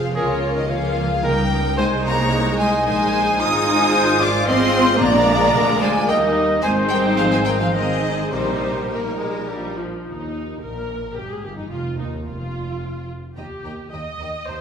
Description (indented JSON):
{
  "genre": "quick classical-period movement for symphony orchestra",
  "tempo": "102-114 BPM",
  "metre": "3/4",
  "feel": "rubato",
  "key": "Ab major, Eb major from 3.4 s",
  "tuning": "A4 = 440 Hz",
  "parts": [
    { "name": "rich chamber violin section", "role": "melody", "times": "0.0-14.6 s", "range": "Eb4 to Eb6", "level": "-26 LUFS", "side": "left 1 dB", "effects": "none" },
    { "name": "flute section", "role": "second line", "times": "0.0-9.8 s", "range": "Bb4 to Eb6", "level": "-25 LUFS", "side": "equal", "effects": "none" },
    { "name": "rich chamber violin section", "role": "second line", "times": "0.0-14.6 s", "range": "Eb4 to Ab5", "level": "-28 LUFS", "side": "left 2 dB", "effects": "none" },
    { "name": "warm clarinet", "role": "second line", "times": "0.0-9.8 s", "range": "G4 to Eb5", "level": "-26 LUFS", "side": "equal", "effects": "none" },
    { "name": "rich studio viola section", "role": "accompaniment", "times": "0.0-14.6 s", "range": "F3 to Eb5", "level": "-25 LUFS", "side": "left 1 dB", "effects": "none" },
    { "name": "clear chamber double bass section", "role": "bass", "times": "0.0-14.6 s", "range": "F1 to Eb2", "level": "-26 LUFS", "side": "right 2 dB", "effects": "none" },
    { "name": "warm chamber cello section", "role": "bass", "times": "0.0-14.5 s", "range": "Eb2 to Eb4", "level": "-25 LUFS", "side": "equal", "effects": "none" },
    { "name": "mellow French horn section", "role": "sustained chords", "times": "0.2-9.8 s", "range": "F3 to F4", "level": "-28 LUFS", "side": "left 3 dB", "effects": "none" },
    { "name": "mellow trumpet", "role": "stabs", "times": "0.2-9.8 s", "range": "Ab4 to Eb5", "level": "-26 LUFS", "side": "right 2 dB", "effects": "none" },
    { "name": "timpani", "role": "percussion", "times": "5.0-5.8 s", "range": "Bb2", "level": "-30 LUFS", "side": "right 1 dB", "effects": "none" }
  ],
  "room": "wet recital hall reverb, RT60 1.4 s",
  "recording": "recorded in a church or concert hall",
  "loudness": "-17 LUFS",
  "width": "side -7 dB against mid",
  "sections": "0.0-10.1 A section; 10.1-14.6 B section",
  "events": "none",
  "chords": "0.2 Bbm7/Db; 1.2 Eb7/Db; 1.8 Ab/C; 3.4 Fm7/Ab; 5.0 Bb7; 6.1 Eb; 6.6 Ab; 8.3 Eb/Bb; 9.5 Bb; 10.1 Eb; 11.7 Ebsus2/F; 13.4 Eb"
}